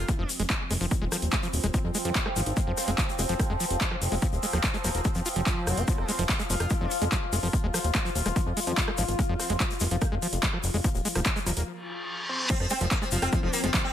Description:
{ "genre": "psychedelic trance", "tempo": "145 BPM", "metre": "4/4", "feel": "straight", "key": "F minor", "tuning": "A4 = 440 Hz", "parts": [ { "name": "metallic wobble bass", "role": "second line", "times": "0.0-13.5 s", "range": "Bb3 to F4", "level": "-40 LUFS", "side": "right 1 dB", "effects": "chorus, sidechain pumping, high-pass filter, tape echo" }, { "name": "bubbling stepped-filter texture", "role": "sustained chords", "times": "0.0-13.9 s", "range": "F3 to F4", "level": "-34 LUFS", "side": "left 1 dB", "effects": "chorus, built-in reverb, sidechain pumping" }, { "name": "fat analog bass", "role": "bass", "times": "0.0-13.7 s", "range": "Eb1 to F2", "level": "-29 LUFS", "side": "equal", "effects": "none" }, { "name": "overdriven acid bass", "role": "riff", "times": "0.1-13.8 s", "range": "F3 to F4", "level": "-34 LUFS", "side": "equal", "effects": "distortion, auto-pan, sidechain pumping, ping-pong delay" }, { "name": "big-room dance drum kit", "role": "drums", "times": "0.1-13.8 s", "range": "crash cymbal, handclaps, hi-hat, rim click", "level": "-31 LUFS", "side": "right 1 dB", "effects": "overdrive" }, { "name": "electronic kick drum", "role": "drums", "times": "0.1-13.8 s", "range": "none", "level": "-28 LUFS", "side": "equal", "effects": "overdrive" }, { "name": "egg shaker", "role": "percussion", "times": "0.1-13.8 s", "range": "none", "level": "-35 LUFS", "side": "left 7 dB", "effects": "none" }, { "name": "reverse cymbal", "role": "sound effects", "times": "11.8-12.5 s", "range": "none", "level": "-30 LUFS", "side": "left 1 dB", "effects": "none" }, { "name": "sitar", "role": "melody", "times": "12.5-13.9 s", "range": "F3 to C4", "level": "-30 LUFS", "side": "equal", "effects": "phaser, sidechain pumping, tape echo" } ], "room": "light reverb", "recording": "none", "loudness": "-24 LUFS", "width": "side -10 dB against mid", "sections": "0.0-12.5 A section; 12.5-13.9 B section", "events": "break 11.7-12.5; reverse cymbal 11.8-12.5; drop 12.5-13.9", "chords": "0.0 F5", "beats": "0.09 0.50 | 0.91 1.33 1.74 2.15 | 2.57 2.98 3.40 3.81 | 4.22 4.64 5.05 5.46 | 5.88 6.29 6.71 7.12 | 7.53 7.95 8.36 8.78 | 9.19 9.60 10.02 10.43 | 10.84 11.26 11.67 12.09 | 12.50 12.91 13.33 13.74" }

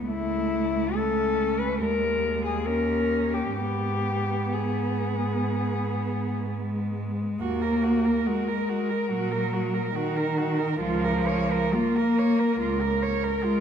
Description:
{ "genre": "classical, lyrical piece for cello ensemble", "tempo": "62-74 BPM", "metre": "4/4", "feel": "rubato", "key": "G# minor, Eb minor from 7.4 s", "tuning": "A4 = 440 Hz", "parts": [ { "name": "muted cello", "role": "second line", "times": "0.0-13.6 s", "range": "G#3 to Db5", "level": "-31 LUFS", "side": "right 9 dB", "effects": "none" }, { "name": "muted cello", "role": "accompaniment", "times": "0.0-13.6 s", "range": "Eb3 to C#4", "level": "-28 LUFS", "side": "left 1 dB", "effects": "none" }, { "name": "muted cello", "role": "bass", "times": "0.0-13.3 s", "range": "Db2 to Bb2", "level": "-30 LUFS", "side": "right 2 dB", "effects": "none" }, { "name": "muted cello", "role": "melody", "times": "0.1-13.6 s", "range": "E4 to B4", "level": "-29 LUFS", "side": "left 5 dB", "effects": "none" } ], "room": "moderate concert hall reverb, RT60 2.4 s", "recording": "none", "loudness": "-23 LUFS", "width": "side -8 dB against mid", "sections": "0.0-7.4 A section; 7.4-13.6 B section", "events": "none", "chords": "0.1 A/C#; 1.8 G#5/D#; 2.7 D#5; 3.6 G#m; 7.4 Ebm; 10.8 Bbm/Db", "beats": "| 0.08 0.97 1.81 2.67 | 3.56 4.53 5.49 6.45 | 7.39 8.26 9.12 9.96 | 10.82 11.74 12.59 13.43" }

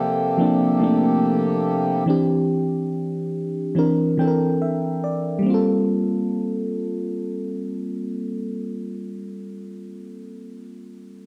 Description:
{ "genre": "R&B", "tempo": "71 BPM", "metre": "4/4", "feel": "straight", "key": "G dorian", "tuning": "A4 = 442 Hz", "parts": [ { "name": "mellow FM electric piano", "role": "accompaniment", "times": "0.0-11.3 s", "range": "E3 to G5", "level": "-24 LUFS", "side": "equal", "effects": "chorus, cassette tape" }, { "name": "pedal harmonium", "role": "sustained chords", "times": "0.0-2.1 s", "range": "C3 to A4", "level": "-26 LUFS", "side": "equal", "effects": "cassette tape" } ], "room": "light reverb, digital ambience", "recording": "home recording on cassette", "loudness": "-22 LUFS", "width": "mono", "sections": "0.0-5.5 A section; 5.5-8.8 B section", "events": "FM electric piano fill 3.8-5.5", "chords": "0.0 Gm11; 2.1 D9sus4; 3.8 C9; 5.5 Gm11", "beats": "0.38 1.23 | 2.07 2.92 3.76 4.61 | 5.45 6.30 7.14 7.99" }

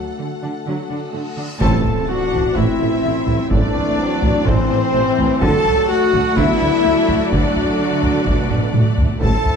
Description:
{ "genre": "cinematic, epic orchestral film score", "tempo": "126 BPM", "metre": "4/4", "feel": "straight", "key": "unclear", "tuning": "A4 = 440 Hz", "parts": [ { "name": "rich studio violin section", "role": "melody", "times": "0.0-9.6 s", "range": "C5 to A5", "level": "-30 LUFS", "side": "left 3 dB", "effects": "none" }, { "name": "rich symphonic violin section", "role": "second line", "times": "0.0-9.6 s", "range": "A4 to A5", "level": "-27 LUFS", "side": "left 3 dB", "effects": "none" }, { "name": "dark French horn section", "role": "sustained chords", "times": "0.0-9.6 s", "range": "A3 to A4", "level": "-20 LUFS", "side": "left 3 dB", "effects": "none" }, { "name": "reverse cymbal and impact", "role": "sound effects", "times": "1.3-3.5 s", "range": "none", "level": "-30 LUFS", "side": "equal", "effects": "none" }, { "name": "warm studio viola section", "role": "accompaniment", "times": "0.2-9.0 s", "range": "E3 to D4", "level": "-27 LUFS", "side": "equal", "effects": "none" }, { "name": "warm symphonic cello section", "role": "bass", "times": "0.2-9.3 s", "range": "A2 to D3", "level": "-25 LUFS", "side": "right 3 dB", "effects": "none" }, { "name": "dark trombone section", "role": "sustained chords", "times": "1.6-9.6 s", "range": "E3 to C4", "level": "-27 LUFS", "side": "right 3 dB", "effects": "none" }, { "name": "rich symphonic string section", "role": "sustained chords", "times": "1.6-9.6 s", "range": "A3 to D5", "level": "-28 LUFS", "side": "equal", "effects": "none" }, { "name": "clear trumpet", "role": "stabs", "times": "1.6-9.6 s", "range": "C4 to A4", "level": "-26 LUFS", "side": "right 2 dB", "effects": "none" }, { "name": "mellow tuba", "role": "bass", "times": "1.6-9.3 s", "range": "A1 to D2", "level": "-27 LUFS", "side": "right 4 dB", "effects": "none" }, { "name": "warm chamber double bass section", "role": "bass", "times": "1.6-9.3 s", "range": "A1 to D2", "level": "-25 LUFS", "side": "right 3 dB", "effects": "none" }, { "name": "taiko ensemble", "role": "drums", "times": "1.6-9.6 s", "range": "none", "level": "-21 LUFS", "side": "equal", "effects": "none" } ], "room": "wet scoring stage reverb, RT60 2.0 s", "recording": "dark, warm production", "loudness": "-15 LUFS", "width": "side -6 dB against mid", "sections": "0.0-1.6 A section; 1.6-9.6 B section", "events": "reverse cymbal 1.3-1.6; band accent 1.6-2.1; impact 1.6-3.5; drum fill 8.5-9.2", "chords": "0.0 D; 1.6 Am; 5.4 D", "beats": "0.19 0.66 1.14 | 1.62 2.09 2.57 3.04 | 3.52 3.99 4.47 4.94 | 5.42 5.89 6.37 6.84 | 7.32 7.79 8.26 8.74 | 9.21" }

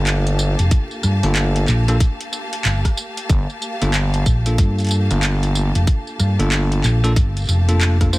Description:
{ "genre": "glitch hop", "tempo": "93 BPM", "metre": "4/4", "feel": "swing 62% on 16ths", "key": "G minor", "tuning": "A4 = 436 Hz", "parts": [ { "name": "bell-like tine electric piano", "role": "stabs", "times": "0.0-8.2 s", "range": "Bb3 to C5", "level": "-25 LUFS", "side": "equal", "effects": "sidechain pumping, dub echo" }, { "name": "gritty driven synth bass", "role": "bass", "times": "0.0-6.8 s", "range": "G1", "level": "-18 LUFS", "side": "equal", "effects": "none" }, { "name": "impact", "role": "sound effects", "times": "0.0-0.7 s", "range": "none", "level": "barely audible", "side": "none", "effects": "none" }, { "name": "clear symphonic string section", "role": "texture", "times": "0.0-8.2 s", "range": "Bb3 to A5", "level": "-28 LUFS", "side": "left 1 dB", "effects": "sidechain pumping" }, { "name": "drum and bass drum kit", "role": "drums", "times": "0.1-8.2 s", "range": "handclaps, hi-hat, rim click, tambourine", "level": "-24 LUFS", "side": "equal", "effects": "none" }, { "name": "hollow-body short-scale fingered electric bass", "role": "bass", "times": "0.6-8.2 s", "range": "F1 to G2", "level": "-17 LUFS", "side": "equal", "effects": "none" }, { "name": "electronic kick drum", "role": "drums", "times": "0.7-8.1 s", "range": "none", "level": "-16 LUFS", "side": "equal", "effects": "none" } ], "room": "little or no reverb", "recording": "vinyl crackle", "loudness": "-16 LUFS", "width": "side -19 dB against mid", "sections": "0.0-8.2 A section", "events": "impact 0.0-0.7", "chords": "0.0 Gm9", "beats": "0.07 | 0.71 1.36 2.00 2.65 | 3.29 3.94 4.58 5.23 | 5.87 6.52 7.16 7.81" }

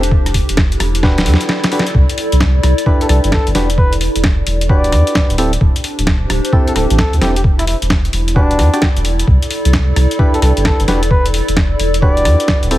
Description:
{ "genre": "UK garage, two-step garage", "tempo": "131 BPM", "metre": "4/4", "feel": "swing 64% on 16ths", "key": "E minor", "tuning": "A4 = 439 Hz", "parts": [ { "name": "percussive organ stab", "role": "stabs", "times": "0.0-12.8 s", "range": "C4 to D5", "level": "-20 LUFS", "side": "equal", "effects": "chorus, tape echo" }, { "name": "saturated sub bass", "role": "bass", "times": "0.0-12.8 s", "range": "D1 to E2", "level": "-14 LUFS", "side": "equal", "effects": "tube saturation" }, { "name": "boom bap sampler-style drum kit", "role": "drums", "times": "0.0-12.8 s", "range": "hi-hat, rim click, snare drum", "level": "-19 LUFS", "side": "equal", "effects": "studio reverb" }, { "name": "warbly tape-like pad", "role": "texture", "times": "0.0-12.8 s", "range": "D4 to D5", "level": "-22 LUFS", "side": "equal", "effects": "chorus, built-in reverb, sidechain pumping" }, { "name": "electronic kick drum", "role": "drums", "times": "0.1-12.6 s", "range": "none", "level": "-14 LUFS", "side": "equal", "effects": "studio reverb" }, { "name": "trumpet with bucket mute", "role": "melody", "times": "3.0-12.7 s", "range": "D4 to D5", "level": "-20 LUFS", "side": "equal", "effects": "tape echo" } ], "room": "little or no reverb", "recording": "heavily compressed radio sound", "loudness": "-11 LUFS", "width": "side -15 dB against mid", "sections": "0.0-12.8 A section", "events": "drum fill 1.0-1.9; break 1.5-1.9", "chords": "0.1 Em9; 1.9 Cmaj9; 3.5 Em9; 5.4 D9sus4; 7.4 Em9; 9.3 Cmaj9; 10.9 Em9", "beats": "| 0.12 0.57 1.03 1.49 | 1.95 2.40 2.86 3.32 | 3.78 4.24 4.70 5.15 | 5.61 6.07 6.53 6.99 | 7.44 7.90 8.36 8.82 | 9.28 9.73 10.19 10.65 | 11.11 11.56 12.02 12.48" }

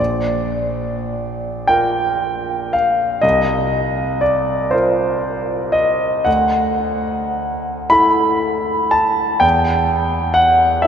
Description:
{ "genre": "classical, impressionist solo piano", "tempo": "34-44 BPM (dotted quarters)", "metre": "6/8", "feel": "rubato", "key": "Bb major", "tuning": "A4 = 440 Hz", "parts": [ { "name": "clear concert grand piano", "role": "solo", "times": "0.0-10.9 s", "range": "Bb1 to Cb6", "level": "-15 LUFS", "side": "equal", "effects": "none" } ], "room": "wet cathedral reverb, RT60 5.5 s", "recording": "none", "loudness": "-15 LUFS", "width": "side -8 dB against mid", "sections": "0.0-10.9 A section", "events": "none", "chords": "0.0 Bb; 3.2 Cm7; 6.3 Dadd9; 9.4 Em", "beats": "1.69 | 3.23 4.73 | 6.26 7.92 | 9.43 10.84" }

